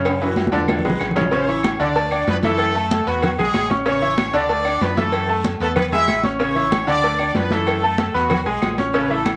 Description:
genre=latin, salsa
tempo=189 BPM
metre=4/4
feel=straight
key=A major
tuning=A4 = 440 Hz
part: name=bright concert grand piano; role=accompaniment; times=0.0-9.4 s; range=C#3 to D6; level=-24 LUFS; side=equal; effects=none
part: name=deep dub fingered electric bass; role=bass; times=0.0-9.4 s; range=A1 to F#2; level=-30 LUFS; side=equal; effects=none
part: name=congas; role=percussion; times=0.0-9.4 s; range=none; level=-26 LUFS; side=equal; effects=none
part: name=claves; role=percussion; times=0.1-9.4 s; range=none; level=-34 LUFS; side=equal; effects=none
part: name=cowbell and bongos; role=percussion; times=0.1-9.4 s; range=none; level=-30 LUFS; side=equal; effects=none
part: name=guiro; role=percussion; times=0.1-9.4 s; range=none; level=-44 LUFS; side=equal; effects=none
part: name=timbales and agogo bells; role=percussion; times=0.1-9.4 s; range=none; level=-30 LUFS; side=equal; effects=none
part: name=bright horn section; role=melody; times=1.3-9.3 s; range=F#3 to E5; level=-24 LUFS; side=equal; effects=none
room=wet studio ambience, RT60 0.5 s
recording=lossy compression artefacts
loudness=-19 LUFS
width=mono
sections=0.0-1.3 A section; 1.3-9.4 B section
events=drum fill 0.1-1.3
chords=0.1 F#5; 0.7 E7; 1.3 A; 2.0 Dsus2; 2.6 F#m7; 3.2 E; 3.9 A; 4.5 Dsus2; 5.1 F#m7; 5.8 E; 6.4 A; 7.0 Dsus2; 7.7 F#m7; 8.3 E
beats=| 0.05 0.37 0.69 1.00 | 1.32 1.64 1.96 2.27 | 2.59 2.91 3.23 3.54 | 3.86 4.18 4.49 4.81 | 5.13 5.45 5.76 6.08 | 6.40 6.72 7.03 7.35 | 7.67 7.99 8.30 8.62 | 8.94 9.26

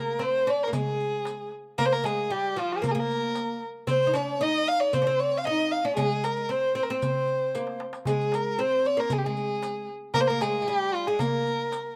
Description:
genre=Arabic maqam ensemble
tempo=115 BPM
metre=4/4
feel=straight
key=unclear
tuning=A4 = 440 Hz
part: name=dark violin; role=melody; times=0.0-12.0 s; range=F4 to F5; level=-28 LUFS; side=equal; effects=none
part: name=oud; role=second line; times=0.0-11.9 s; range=F3 to Eb4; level=-34 LUFS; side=equal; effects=slapback echo
part: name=darbuka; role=percussion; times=0.1-11.8 s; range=none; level=-36 LUFS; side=equal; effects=none
part: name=riq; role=percussion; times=0.2-11.8 s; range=none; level=-43 LUFS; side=equal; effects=none
room=little or no reverb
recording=recorded outdoors, with no room sound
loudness=-27 LUFS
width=mono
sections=0.0-12.0 A section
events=drum fill 7.5-8.1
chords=none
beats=0.21 0.74 1.26 | 1.78 2.31 2.83 3.36 | 3.88 4.41 4.93 5.45 | 5.98 6.50 7.02 7.55 | 8.07 8.59 9.11 9.64 | 10.16 10.68 11.20 11.72

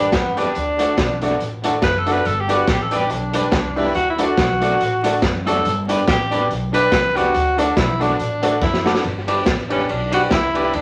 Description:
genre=ska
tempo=141 BPM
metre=4/4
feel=swing 56% on 8ths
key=G major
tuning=A4 = 440 Hz
part: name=breathy tenor saxophone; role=melody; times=0.0-10.8 s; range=B3 to B4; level=-23 LUFS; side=equal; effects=none
part: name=electric guitar at the edge of break-up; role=accompaniment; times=0.0-10.7 s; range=A3 to B4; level=-29 LUFS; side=equal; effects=none
part: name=dark upright piano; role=stabs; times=0.0-10.7 s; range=D4 to D5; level=-25 LUFS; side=equal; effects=none
part: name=upright bass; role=bass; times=0.0-10.8 s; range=F#1 to D2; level=-29 LUFS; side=equal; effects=none
part: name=raw garage drum kit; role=drums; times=0.1-10.8 s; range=hi-hat, kick drum, ride cymbal, snare drum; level=-24 LUFS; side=equal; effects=dub echo
room=wet studio reverb, RT60 0.6 s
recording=vinyl crackle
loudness=-18 LUFS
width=mono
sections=0.0-9.0 A section; 9.0-10.8 A section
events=tenor saxophone solo 0.0-9.0, 9.0-10.8; drum fill 8.6-9.0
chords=0.0 G; 0.6 D; 2.3 G; 4.0 D; 5.6 G; 7.3 D; 9.0 G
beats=0.13 | 0.56 0.98 1.41 1.83 | 2.25 2.68 3.10 3.53 | 3.95 4.38 4.80 5.22 | 5.65 6.07 6.50 6.92 | 7.34 7.77 8.19 8.62 | 9.04 9.47 9.89 10.31 | 10.74

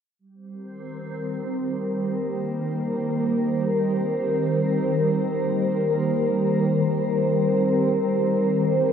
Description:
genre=IDM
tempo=free time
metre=none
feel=none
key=unclear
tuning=A4 = 439 Hz
part: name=glassy FM pad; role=sustained chords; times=0.5-8.9 s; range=Eb3 to C5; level=-21 LUFS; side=equal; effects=ensemble chorus, built-in reverb
room=wet spring reverb, RT60 1.3 s, digital ambience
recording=none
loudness=-21 LUFS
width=side -8 dB against mid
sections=0.2-6.8 A section; 6.8-8.9 B section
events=filter sweep on ambient pad 0.2-6.8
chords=0.2 Eb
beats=free time

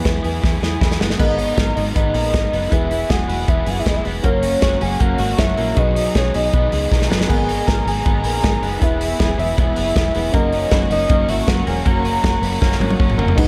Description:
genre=jangly indie pop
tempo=158 BPM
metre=4/4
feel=straight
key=unclear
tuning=A4 = 436 Hz
part: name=soft octave-layered synth lead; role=melody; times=0.0-13.5 s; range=D#4 to A#5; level=-24 LUFS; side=equal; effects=chorus, tremolo
part: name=overdriven semi-hollow guitar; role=accompaniment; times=0.0-13.5 s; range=F#2 to A#4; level=-30 LUFS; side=equal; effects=none
part: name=twelve-string electric guitar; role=arpeggios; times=0.0-13.5 s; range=E3 to A#4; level=-28 LUFS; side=equal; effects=analog chorus, slapback echo
part: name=fingered electric bass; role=bass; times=0.1-13.5 s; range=E1 to E2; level=-25 LUFS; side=equal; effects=none
part: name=modern studio drum kit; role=drums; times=0.1-13.5 s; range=crash cymbal, hi-hat, kick drum, snare drum, toms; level=-21 LUFS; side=equal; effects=none
part: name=clear upright piano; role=accompaniment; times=1.2-13.5 s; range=B3 to B4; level=-32 LUFS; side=equal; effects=none
part: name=warm chamber string section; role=sustained chords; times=7.3-13.5 s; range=B3 to D#6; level=-34 LUFS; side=equal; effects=none
room=light reverb, small room ambience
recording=none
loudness=-18 LUFS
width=mono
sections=0.0-1.2 A section; 1.2-13.4 B section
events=drum fill 0.4-1.2, 6.9-7.3, 12.6-13.4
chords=0.0 E; 1.2 G#madd9; 2.7 E; 4.2 F#; 5.8 B6; 7.3 G#madd9; 8.8 E; 10.3 F#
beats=0.05 0.43 0.81 | 1.19 1.57 1.96 2.34 | 2.72 3.10 3.48 3.87 | 4.25 4.63 5.01 5.39 | 5.77 6.15 6.53 6.92 | 7.29 7.68 8.06 8.44 | 8.82 9.20 9.58 9.96 | 10.34 10.72 11.10 11.48 | 11.86 12.24 12.62 13.00 | 13.38

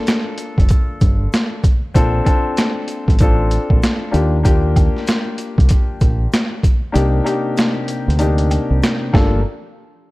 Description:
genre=hip hop, boom-bap hip-hop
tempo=96 BPM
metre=4/4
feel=swing 61% on 16ths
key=G minor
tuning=A4 = 436 Hz
part: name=dark concert grand piano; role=accompaniment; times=0.0-9.4 s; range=Bb3 to A4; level=-21 LUFS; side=left 3 dB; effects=high-pass filter, low-pass filter
part: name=boom bap sampler-style drum kit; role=drums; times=0.1-9.3 s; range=hi-hat, kick drum, snare drum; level=-16 LUFS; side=equal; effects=overdrive
part: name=egg shaker and woodblock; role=percussion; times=0.1-9.4 s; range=none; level=-34 LUFS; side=right 1 dB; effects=none
part: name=deep dub fingered electric bass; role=bass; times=0.6-9.4 s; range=F1 to Eb2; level=-16 LUFS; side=equal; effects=none
part: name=mellow tonewheel organ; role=sustained chords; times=6.9-9.4 s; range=C3 to G4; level=-26 LUFS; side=right 1 dB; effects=none
room=studio ambience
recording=worn, warbling old tape, cassette tape, warbly pitch drift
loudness=-14 LUFS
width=side -20 dB against mid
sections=0.0-9.4 A section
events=kick muted 7.0-9.4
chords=0.0 Gm7; 1.9 Bbmaj7; 4.1 Ebmaj7; 7.0 Cm7; 9.1 Gm7; 9.4 N.C.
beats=0.07 0.70 1.32 | 1.95 2.58 3.20 3.83 | 4.45 5.08 5.70 6.33 | 6.95 7.58 8.20 8.82

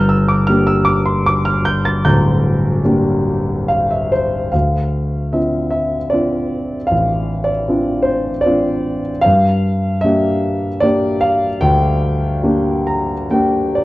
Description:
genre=classical, lyrical solo piano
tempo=67-79 BPM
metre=3/4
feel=rubato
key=G dorian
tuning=A4 = 435 Hz
part: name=dark concert grand piano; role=solo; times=0.0-13.8 s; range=D1 to A6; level=-14 LUFS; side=equal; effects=none
room=moderate recital hall reverb, RT60 1.5 s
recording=worn, warbling old tape, cassette tape, warbly pitch drift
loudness=-14 LUFS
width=side -18 dB against mid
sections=0.0-4.5 A section; 4.5-13.8 B section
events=grand piano fill 3.3-4.5, 12.4-13.8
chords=0.0 Gm; 4.5 Dm7; 9.3 Gm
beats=0.48 1.25 | 2.04 2.85 3.69 | 4.54 5.34 6.13 | 6.91 7.68 8.46 | 9.25 10.04 10.83 | 11.63 12.45 13.31

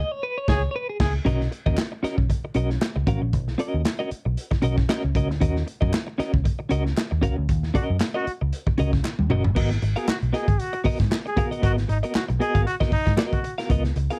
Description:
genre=funk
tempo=116 BPM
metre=4/4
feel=swing 56% on 16ths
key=G# dorian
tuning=A4 = 440 Hz
part: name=clean electric guitar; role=accompaniment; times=0.0-14.2 s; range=B3 to E#5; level=-29 LUFS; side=equal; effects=tremolo
part: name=brilliant trombone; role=second line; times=0.5-1.1, 7.8-14.2 s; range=D#4 to G#4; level=-31 LUFS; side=equal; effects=none
part: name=vintage muted picked electric bass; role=bass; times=0.5-14.1 s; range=F#1 to G#2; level=-26 LUFS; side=equal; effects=none
part: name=crunchy breakbeat drum kit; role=drums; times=0.5-14.2 s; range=crash cymbal, hi-hat, kick drum, snare drum, toms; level=-27 LUFS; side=equal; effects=none
part: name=group handclap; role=percussion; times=1.8-13.3 s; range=none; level=-39 LUFS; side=equal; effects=none
room=light reverb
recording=cassette tape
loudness=-24 LUFS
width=mono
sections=0.0-1.3 A section; 1.3-9.6 B section; 9.6-14.2 C section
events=band accent 0.0-1.3, 7.5-9.6; clean electric guitar solo 0.0-1.3; drum fill 9.0-9.6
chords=0.0 C#5; 1.3 Bmaj9; 5.4 D#m7; 9.6 G#m9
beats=0.22 0.74 | 1.26 1.78 2.30 2.82 | 3.34 3.85 4.37 4.89 | 5.41 5.93 6.45 6.97 | 7.49 8.01 8.52 9.04 | 9.56 10.08 10.60 11.11 | 11.63 12.15 12.66 13.18 | 13.70

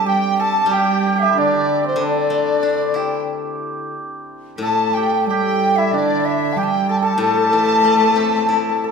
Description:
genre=chinese traditional, Chinese chamber ensemble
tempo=93 BPM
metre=4/4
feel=rubato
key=D shang mode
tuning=A4 = 440 Hz
part: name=mellow hollow large dizi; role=melody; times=0.0-8.9 s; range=C5 to A5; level=-20 LUFS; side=right 1 dB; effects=none
part: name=breathy bright large dizi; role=second line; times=0.0-8.9 s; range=D5 to A5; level=-23 LUFS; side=left 6 dB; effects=none
part: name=dark cello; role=second line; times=0.0-8.9 s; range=D3 to A3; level=-23 LUFS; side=right 3 dB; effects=none
part: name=hammered dulcimer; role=second line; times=0.0-8.9 s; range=C4 to A4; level=-22 LUFS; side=right 3 dB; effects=none
part: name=steel-string zither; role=accompaniment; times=0.7-8.9 s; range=A2 to E4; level=-23 LUFS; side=left 8 dB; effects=none
room=wet recital hall reverb, RT60 1.4 s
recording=minimal, uncompressed stereo recording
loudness=-15 LUFS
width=side -5 dB against mid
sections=0.0-8.9 A section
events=none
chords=none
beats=0.07 0.71 1.35 | 1.99 2.63 3.27 3.94 | 4.61 5.27 5.92 6.56 | 7.21 7.85 8.49

